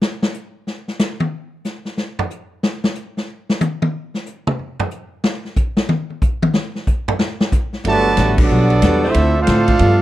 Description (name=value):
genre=jazz, big band swing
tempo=184 BPM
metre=4/4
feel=swing 64% on 8ths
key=G major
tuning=A4 = 439 Hz
part: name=swinging big-band drum kit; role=drums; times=0.0-9.9 s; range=crash cymbal, hi-hat, kick drum, ride cymbal, snare drum, toms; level=-18 LUFS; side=left 1 dB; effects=none
part: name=picked steel-string acoustic guitar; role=accompaniment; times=7.8-10.0 s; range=G2 to A4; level=-22 LUFS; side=left 4 dB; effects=none
part: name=upright bass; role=bass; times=7.8-10.0 s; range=G1 to A2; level=-16 LUFS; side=equal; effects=none
part: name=clear trumpet section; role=melody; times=7.9-10.0 s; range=B3 to A5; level=-18 LUFS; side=right 2 dB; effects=none
part: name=warm trombone section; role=second line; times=7.9-10.0 s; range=D3 to F4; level=-18 LUFS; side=right 4 dB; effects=none
part: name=warm saxophone section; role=sustained chords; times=9.0-9.5 s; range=F3 to C5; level=-25 LUFS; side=equal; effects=none
room=small room ambience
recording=none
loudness=-16 LUFS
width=side -14 dB against mid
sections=0.0-7.8 A section; 7.8-10.0 B section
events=drum solo 0.0-7.8; band accent 8.3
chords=0.0 N.C.; 7.8 Gmaj9; 9.2 Dm7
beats=| 0.01 0.34 0.67 0.99 | 1.32 1.65 1.97 2.30 | 2.63 2.95 3.28 3.61 | 3.93 4.26 4.59 4.91 | 5.24 5.57 5.89 6.22 | 6.54 6.87 7.20 7.52 | 7.85 8.18 8.50 8.83 | 9.15 9.48 9.81